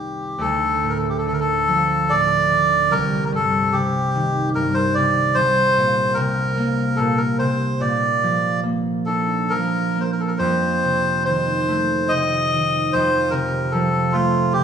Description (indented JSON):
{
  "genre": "celtic folk, Celtic slow air",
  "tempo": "67-76 BPM",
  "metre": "3/4",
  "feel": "rubato",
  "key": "unclear",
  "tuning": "A4 = 440 Hz",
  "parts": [
    { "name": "melodica", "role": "melody", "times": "0.0-14.6 s", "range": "F4 to Eb5", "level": "-19 LUFS", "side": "equal", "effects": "none" },
    { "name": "concert harp", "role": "accompaniment", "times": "0.0-14.6 s", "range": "C2 to D4", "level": "-21 LUFS", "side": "right 1 dB", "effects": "none" }
  ],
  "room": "wet large studio reverb, RT60 1.2 s",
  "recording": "band playing live in one room, small room ambience",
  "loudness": "-17 LUFS",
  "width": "side -7 dB against mid",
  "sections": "0.4-14.6 A section",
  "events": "none",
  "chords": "0.4 Dm; 2.9 Cm; 5.3 Bbsus2/C; 7.8 Bb; 10.4 F7; 12.9 F"
}